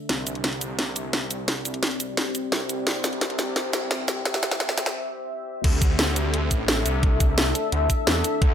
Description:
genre	dark technical drum and bass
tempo	173 BPM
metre	4/4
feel	straight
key	unclear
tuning	A4 = 439 Hz
part	deep dark ambient pad	sustained chords	0.0-8.5 s	C4 to E5	-29 LUFS	left 2 dB	chorus, built-in reverb, sidechain pumping
part	wide detuned saw bass	bass	0.1-8.5 s	A1 to E2	-28 LUFS	equal	chorus, tube saturation, sidechain pumping
part	drum and bass drum kit	drums	0.1-8.5 s	crash cymbal, hi-hat, shaker, snare drum	-24 LUFS	equal	none
part	electronic kick drum	drums	5.6-8.5 s	none	-20 LUFS	equal	none
room	light reverb, digital ambience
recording	high-pass filter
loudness	-22 LUFS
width	side -9 dB against mid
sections	0.0-5.6 A section; 5.6-8.5 B section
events	build-up 0.0-5.6; filter sweep on ambient pad 0.0-5.6; drum fill 0.1-4.9; break 4.9-5.6; drop 5.6-8.5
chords	0.1 C; 5.6 D5

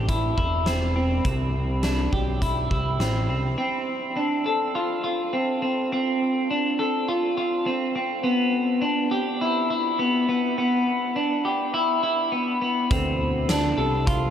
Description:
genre	dream pop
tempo	103 BPM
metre	4/4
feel	straight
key	D dorian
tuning	A4 = 440 Hz
part	semi-hollow electric guitar	arpeggios	0.0-14.3 s	B3 to A4	-22 LUFS	equal	lush chorus, analog delay
part	fat analog bass	bass	0.0-3.6, 12.9-14.3 s	E1 to D2	-25 LUFS	equal	none
part	huge arena drum kit	drums	0.1-3.1, 12.9-14.2 s	hi-hat, kick drum, snare drum, tambourine	-28 LUFS	equal	none
room	wet huge ambient reverb, RT60 8.9 s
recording	dreamy mix soaked in reverb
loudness	-21 LUFS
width	side -9 dB against mid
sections	0.0-3.6 A section; 3.6-14.3 B section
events	none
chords	0.0 Am; 3.6 Dm7; 8.2 Em7; 12.9 Dm7

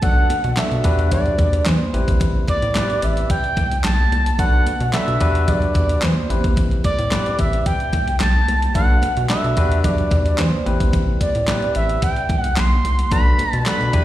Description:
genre	early-eighties boogie funk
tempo	110 BPM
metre	4/4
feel	straight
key	unclear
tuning	A4 = 440 Hz
part	expressive synth lead	melody	0.0-14.0 s	C5 to C6	-22 LUFS	right 2 dB	chorus, plate reverb, slapback echo, tape echo
part	barky tine electric piano	accompaniment	0.0-14.0 s	B3 to B4	-26 LUFS	left 4 dB	overdrive, auto-pan, plate reverb, slapback echo
part	rubbery square bass	bass	0.0-14.0 s	A1 to E3	-19 LUFS	equal	none
part	crisp 8-bit digital drum machine	drums	0.0-14.0 s	handclaps, hi-hat, kick drum, snare drum	-22 LUFS	equal	none
part	congas	percussion	0.0-14.0 s	none	-29 LUFS	right 1 dB	slapback echo
room	light reverb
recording	live gig heard through the venue's PA, recital hall reverb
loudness	-16 LUFS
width	side -14 dB against mid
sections	0.0-14.0 A section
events	none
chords	0.0 Bm7; 0.8 Em9; 1.9 Am9; 4.4 Bm7; 5.2 Em9; 6.3 Am9; 8.8 Bm7; 9.6 Em9; 10.7 Am9; 13.1 Bm7

